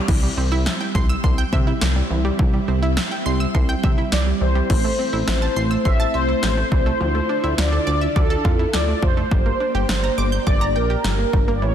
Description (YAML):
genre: synth-pop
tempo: 104 BPM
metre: 4/4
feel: straight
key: unclear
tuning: A4 = 440 Hz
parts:
  - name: ensemble organ-string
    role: sustained chords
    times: 0.0-11.7 s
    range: D3 to A4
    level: -27 LUFS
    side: right 1 dB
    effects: phaser, ensemble chorus
  - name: analog pluck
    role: arpeggios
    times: 0.0-11.7 s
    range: E3 to G6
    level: -27 LUFS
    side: right 3 dB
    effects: chorus, digital delay
  - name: chorused synth bass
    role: bass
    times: 0.1-11.7 s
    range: F1 to C3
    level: -22 LUFS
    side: equal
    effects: none
  - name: punchy analog drum machine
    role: drums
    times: 0.1-11.5 s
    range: crash cymbal, kick drum, snare drum, toms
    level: -21 LUFS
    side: equal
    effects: none
  - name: mellow synth brass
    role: melody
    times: 4.1-11.7 s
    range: A4 to E5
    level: -23 LUFS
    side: equal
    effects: chorus, digital delay
room: moderate concert hall reverb, RT60 2.3 s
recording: dense, heavily limited modern master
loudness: -17 LUFS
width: side -9 dB against mid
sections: 0.1-4.7 A section; 4.7-11.7 B section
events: none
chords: 0.1 C; 4.7 Am; 7.0 Dmadd9; 9.3 Gm